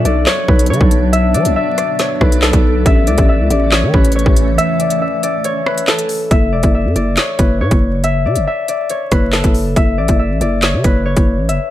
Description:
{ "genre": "hip hop, drill", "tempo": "139 BPM", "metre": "4/4", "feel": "half-time", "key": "F# minor", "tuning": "A4 = 440 Hz", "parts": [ { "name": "concert harp", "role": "melody", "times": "0.0-11.7 s", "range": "A4 to E5", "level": "-17 LUFS", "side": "left 3 dB", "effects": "low-pass filter, digital delay" }, { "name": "granular cloud pad", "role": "sustained chords", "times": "0.0-6.3 s", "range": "E3 to D4", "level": "-22 LUFS", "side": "right 2 dB", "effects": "built-in reverb" }, { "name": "growling 808-style bass", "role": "bass", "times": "0.0-11.6 s", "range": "E1 to F#3", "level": "-15 LUFS", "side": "equal", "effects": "none" }, { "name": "drill drum kit", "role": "drums", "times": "0.1-11.6 s", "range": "handclaps, hi-hat, kick drum, rim click, snare drum", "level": "-14 LUFS", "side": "equal", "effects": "none" } ], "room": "little or no reverb", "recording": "vinyl crackle", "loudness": "-11 LUFS", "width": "side -13 dB against mid", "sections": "0.0-6.3 A section; 6.3-11.7 B section", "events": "break 4.6-6.3", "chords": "0.0 Bm; 2.9 A; 6.3 F#m", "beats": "0.27 0.70 | 1.13 1.56 1.99 2.43 | 2.86 3.29 3.72 4.15 | 4.58 5.02 5.45 5.88 | 6.31 6.74 7.17 7.61 | 8.04 8.47 8.90 9.33 | 9.76 10.20 10.63 11.06 | 11.49" }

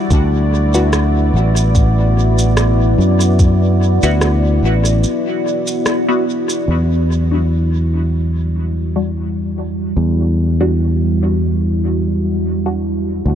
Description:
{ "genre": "ambient dub", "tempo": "73 BPM", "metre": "4/4", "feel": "swing 55% on 16ths", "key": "E minor", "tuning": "A4 = 440 Hz", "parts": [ { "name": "deep dark ambient pad", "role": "sustained chords", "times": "0.0-13.3 s", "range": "G3 to D5", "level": "-19 LUFS", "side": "equal", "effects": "chorus, built-in reverb" }, { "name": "fingered electric bass", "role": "bass", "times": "0.1-13.3 s", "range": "A1 to F#2", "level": "-14 LUFS", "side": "equal", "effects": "tube saturation" }, { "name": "electronic kick drum", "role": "drums", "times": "0.1-3.6 s", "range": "none", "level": "-13 LUFS", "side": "equal", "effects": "none" }, { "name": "electronic shaker and rim click", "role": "drums", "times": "0.1-6.6 s", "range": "none", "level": "-24 LUFS", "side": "right 1 dB", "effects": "low-pass filter on perc, low-pass filter on snare, low-pass filter on room, dub echo" }, { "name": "filtered dub chord stab", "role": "stabs", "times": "0.7-12.8 s", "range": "G3 to F#4", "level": "-24 LUFS", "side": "left 2 dB", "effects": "phaser, lush chorus, dub echo" } ], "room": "digital ambience", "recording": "dark, warm production", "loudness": "-13 LUFS", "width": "side -9 dB against mid", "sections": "0.0-6.7 A section; 6.7-13.3 B section", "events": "break 5.0-6.7; filter sweep on drum 6.7-13.3", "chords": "0.1 D69; 6.7 Em9", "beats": "| 0.11 0.93 1.75 2.57 | 3.39 4.21 5.04 5.86 | 6.68 7.50 8.32 9.15 | 9.97 10.79 11.61 12.43 | 13.26" }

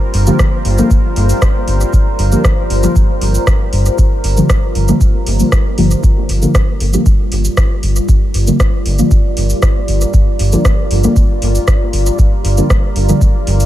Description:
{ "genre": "dub techno", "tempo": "117 BPM", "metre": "4/4", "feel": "straight", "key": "G minor", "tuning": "A4 = 438 Hz", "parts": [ { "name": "deep dark ambient pad", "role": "sustained chords", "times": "0.0-13.7 s", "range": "G3 to D5", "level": "-20 LUFS", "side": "equal", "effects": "chorus, built-in reverb, sidechain pumping" }, { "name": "round analog bass", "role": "bass", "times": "0.1-13.6 s", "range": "G1", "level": "-13 LUFS", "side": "equal", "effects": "sidechain pumping" }, { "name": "booming analog drum machine", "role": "drums", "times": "0.1-13.7 s", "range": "hi-hat, rim click, shaker", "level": "-22 LUFS", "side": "equal", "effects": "dub echo" }, { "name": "deep mellow chord stab", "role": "stabs", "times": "0.3-13.2 s", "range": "D3 to Bb3", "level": "-17 LUFS", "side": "equal", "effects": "chorus, phaser, cassette tape, sidechain pumping, dub echo" }, { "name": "electronic kick drum", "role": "drums", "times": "0.4-13.3 s", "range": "none", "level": "-12 LUFS", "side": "equal", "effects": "none" } ], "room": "digital ambience", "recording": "none", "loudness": "-10 LUFS", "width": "side -13 dB against mid", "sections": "0.0-13.7 A section", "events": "filter sweep on synth stab 0.0-13.7", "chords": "0.0 Gm7", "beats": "0.39 0.91 1.42 | 1.93 2.44 2.96 3.47 | 3.98 4.50 5.01 5.52 | 6.04 6.55 7.06 7.57 | 8.09 8.60 9.11 9.62 | 10.14 10.65 11.16 11.68 | 12.19 12.70 13.21" }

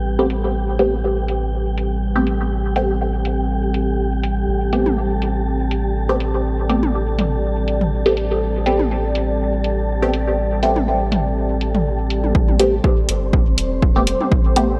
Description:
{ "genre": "dub techno", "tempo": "122 BPM", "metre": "4/4", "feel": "swing 55% on 16ths", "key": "A minor", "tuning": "A4 = 440 Hz", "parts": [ { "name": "deep dark ambient pad", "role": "sustained chords", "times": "0.0-14.8 s", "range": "G3 to D5", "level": "-27 LUFS", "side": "equal", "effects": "chorus, built-in reverb, sidechain pumping" }, { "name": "soft dub sub bass", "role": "bass", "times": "0.0-14.8 s", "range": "E1 to A1", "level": "-24 LUFS", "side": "equal", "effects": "sidechain pumping" }, { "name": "wind-like tuned noise texture", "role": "texture", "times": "0.0-14.8 s", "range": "C4 to A5", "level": "-30 LUFS", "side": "equal", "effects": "built-in reverb, sidechain pumping" }, { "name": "filtered dub chord stab", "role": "stabs", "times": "0.2-14.7 s", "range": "A3 to G4", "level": "-23 LUFS", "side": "equal", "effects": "phaser, sidechain pumping, dub echo" }, { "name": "electronic hi-hat", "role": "drums", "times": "0.3-14.7 s", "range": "none", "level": "-28 LUFS", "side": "equal", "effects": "low-pass filter on perc, low-pass filter on snare, low-pass filter on hats" }, { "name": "electronic toms", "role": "percussion", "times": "4.9-14.3 s", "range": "none", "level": "-27 LUFS", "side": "equal", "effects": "overdrive, sidechain pumping on toms, dub echo" }, { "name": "electronic kick drum", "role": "drums", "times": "12.3-14.4 s", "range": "none", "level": "-18 LUFS", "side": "equal", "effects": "none" } ], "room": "light reverb, digital ambience", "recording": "dry, gritty hardware recording", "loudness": "-19 LUFS", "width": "mono", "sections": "0.0-12.3 A section; 12.3-14.8 B section", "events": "filter sweep on ambient pad 0.0-12.3", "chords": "0.0 Am9", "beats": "0.05 | 0.55 1.04 1.53 2.02 | 2.51 3.00 3.50 3.99 | 4.48 4.97 5.46 5.96 | 6.45 6.94 7.43 7.92 | 8.41 8.91 9.40 9.89 | 10.38 10.87 11.37 11.86 | 12.35 12.84 13.33 13.82 | 14.32" }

